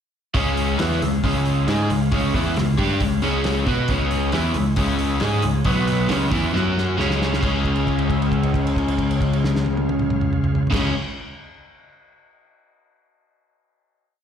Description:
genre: classic rock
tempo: 135 BPM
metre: 4/4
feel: straight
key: Db major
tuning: A4 = 440 Hz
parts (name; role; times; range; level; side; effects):
- tonewheel organ; sustained chords; 0.3-10.9 s; Cb4 to Gb5; -35 LUFS; right 1 dB; slow rotary speaker, overdrive
- overdriven electric guitar; riff; 0.3-10.9 s; Cb3 to Cb5; -23 LUFS; left 9 dB; slapback echo
- overdriven electric guitar; riff; 0.3-10.9 s; Cb3 to Cb5; -24 LUFS; right 11 dB; phaser
- growling picked electric bass; bass; 0.3-10.9 s; Cb2 to Cb3; -24 LUFS; right 1 dB; overdrive
- damped 70s drum kit; drums; 0.3-10.8 s; crash cymbal, hi-hat, kick drum, snare drum, toms; -26 LUFS; right 1 dB; none
room: light reverb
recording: live gig heard through the venue's PA, recital hall reverb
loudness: -18 LUFS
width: side -8 dB against mid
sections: 0.3-7.4 riff; 7.4-11.0 final chord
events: drum fill 6.5-7.4; held note 7.4-10.7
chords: 0.3 Db; 5.7 Cb5; 6.1 Db; 6.5 Gb5; 7.0 Db

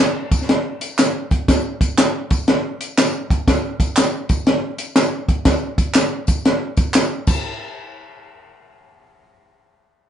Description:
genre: soul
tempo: 121 BPM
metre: 4/4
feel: swing 66% on 8ths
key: none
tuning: none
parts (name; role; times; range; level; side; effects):
- compact cocktail drum kit; drums; 0.0-7.4 s; crash cymbal, hi-hat, kick drum, snare drum; -16 LUFS; equal; none
- tambourine and handclaps; percussion; 0.3-7.7 s; none; -24 LUFS; right 1 dB; none
room: moderate studio ambience, RT60 0.5 s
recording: band playing live in one room, nothing above 10.4 kHz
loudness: -16 LUFS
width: side -9 dB against mid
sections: 0.0-7.4 A section; 7.4-10.1 B section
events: none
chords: none

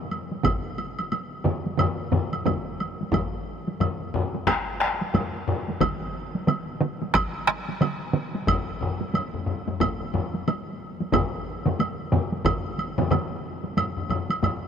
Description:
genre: japanese traditional, taiko drum ensemble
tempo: 90 BPM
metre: 4/4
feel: swing 60% on 16ths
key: none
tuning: none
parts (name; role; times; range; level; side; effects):
- taiko ensemble; percussion; 0.1-14.6 s; none; -30 LUFS; right 1 dB; none
- woodblock; percussion; 0.1-14.6 s; none; -32 LUFS; right 3 dB; none
- taiko ensemble; percussion; 0.4-14.6 s; none; -28 LUFS; left 3 dB; none
- taiko ensemble; percussion; 0.4-13.3 s; none; -28 LUFS; right 3 dB; none
- taiko ensemble; percussion; 0.4-12.6 s; none; -31 LUFS; left 1 dB; none
room: moderate huge ambient reverb, RT60 5.2 s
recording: none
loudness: -24 LUFS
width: side -7 dB against mid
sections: 0.0-3.1 A section; 3.1-13.8 B section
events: none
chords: none

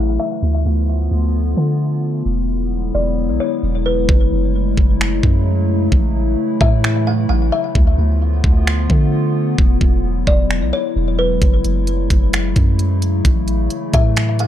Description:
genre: hip hop, atmospheric cloud-rap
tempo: 131 BPM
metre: 4/4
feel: half-time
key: unclear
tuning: A4 = 440 Hz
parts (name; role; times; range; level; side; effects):
- kalimba; melody; 0.0-14.5 s; B4 to F#5; -24 LUFS; left 1 dB; low-pass filter, ping-pong delay
- warbly tape-like pad; sustained chords; 0.0-14.5 s; C#3 to F4; -21 LUFS; left 2 dB; chorus, built-in reverb, sidechain pumping
- soft 808-style bass; bass; 0.0-14.5 s; E1 to D3; -17 LUFS; equal; none
- trap drum kit; drums; 4.1-14.5 s; finger snaps, hi-hat, kick drum; -15 LUFS; equal; none
room: digital ambience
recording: dark, warm production, low-pass filter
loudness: -14 LUFS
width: side -11 dB against mid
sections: 0.0-4.1 A section; 4.1-14.5 B section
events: filter sweep 0.0-4.1; hi-hats muted 4.1-11.4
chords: 0.4 Dm6; 2.3 E9; 4.1 F#m9; 5.9 A6; 7.8 Dm6; 9.6 E9; 11.4 F#m9; 13.2 A6

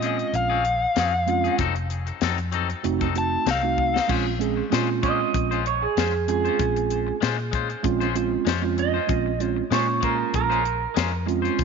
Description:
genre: straight-eighth soul blues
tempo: 96 BPM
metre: 4/4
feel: swing 54% on 16ths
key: Bb minor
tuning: A4 = 442 Hz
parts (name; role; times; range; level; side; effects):
- biting lead guitar; melody; 0.0-4.1 s; Eb5 to A5; -24 LUFS; left 2 dB; overdrive
- mellow tine electric piano; accompaniment; 0.0-11.6 s; Ab3 to Ab4; -26 LUFS; right 10 dB; none
- clean electric guitar; stabs; 0.0-11.6 s; F3 to C5; -29 LUFS; left 12 dB; tape echo
- vintage muted fingered electric bass; bass; 0.0-11.6 s; F1 to Bb2; -28 LUFS; left 1 dB; none
- tight funk drum kit; drums; 0.0-11.6 s; crash cymbal, hi-hat, kick drum, snare drum; -28 LUFS; left 7 dB; none
- electric guitar through a small old amp; second line; 5.0-11.6 s; Ab4 to Eb5; -26 LUFS; right 7 dB; none
room: moderate echo chamber reverb, RT60 1.9 s, small room ambience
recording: 1960s-style stereo with parts hard left and right, nothing above 7.5 kHz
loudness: -21 LUFS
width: side -5 dB against mid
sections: 0.0-4.1 A section; 4.1-11.6 B section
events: drum fill 3.8-4.1; clean electric guitar solo 4.1-11.6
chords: 0.0 Bbm9; 1.6 F7b9; 4.1 Bbm9

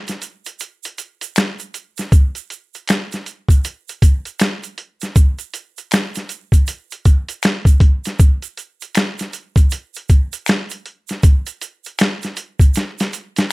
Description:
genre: R&B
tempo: 79 BPM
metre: 4/4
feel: swing 61% on 16ths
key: none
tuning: none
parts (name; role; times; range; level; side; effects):
- boom bap sampler-style drum kit; drums; 0.1-13.5 s; finger snaps, hi-hat, kick drum, snare drum; -14 LUFS; equal; none
- egg shaker and finger snaps; percussion; 0.1-13.5 s; none; -27 LUFS; right 2 dB; none
room: little or no reverb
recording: none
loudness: -15 LUFS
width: side -22 dB against mid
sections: 0.0-2.1 A section; 2.1-13.5 B section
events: break 0.0-2.1; drum fill 12.8-13.5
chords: none

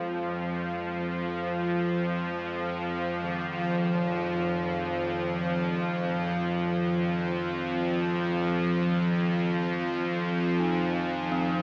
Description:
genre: dark ambient drone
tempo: free time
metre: none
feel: none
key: F minor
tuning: A4 = 438 Hz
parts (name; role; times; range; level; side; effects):
- bronze singing bowl; arpeggios; 0.0-11.6 s; Bb2 to Eb4; -42 LUFS; equal; none
- bowed-like drone; drone; 0.0-11.6 s; F2 to F3; -29 LUFS; equal; built-in reverb
room: wet cathedral reverb, RT60 5.8 s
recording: small speaker sound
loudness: -29 LUFS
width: mono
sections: 0.0-11.6 A section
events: none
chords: 0.0 Fm

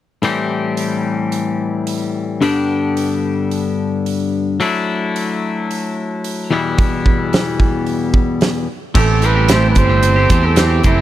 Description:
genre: indie rock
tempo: 110 BPM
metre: 4/4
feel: straight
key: A dorian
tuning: A4 = 436 Hz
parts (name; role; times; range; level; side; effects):
- twangy electric guitar; riff; 0.2-11.0 s; E2 to G4; -17 LUFS; left 3 dB; none
- big rock drum kit; drums; 0.2-11.0 s; crash cymbal, hi-hat, kick drum, snare drum; -18 LUFS; right 1 dB; none
- breathy trumpet; melody; 9.0-11.0 s; E4 to C5; -18 LUFS; right 4 dB; none
- biting overdriven guitar; riff; 9.0-11.0 s; A2 to C5; -23 LUFS; right 16 dB; analog chorus
- modern bright picked electric bass; bass; 9.0-11.0 s; F#1 to E2; -14 LUFS; right 1 dB; none
room: small room ambience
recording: dry, close 1970s-style studio recording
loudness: -14 LUFS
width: side -13 dB against mid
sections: 0.2-8.9 A section; 8.9-11.0 B section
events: none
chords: 0.2 Am7; 2.4 G; 4.6 Dadd9/F#; 6.5 Em; 8.9 Am7

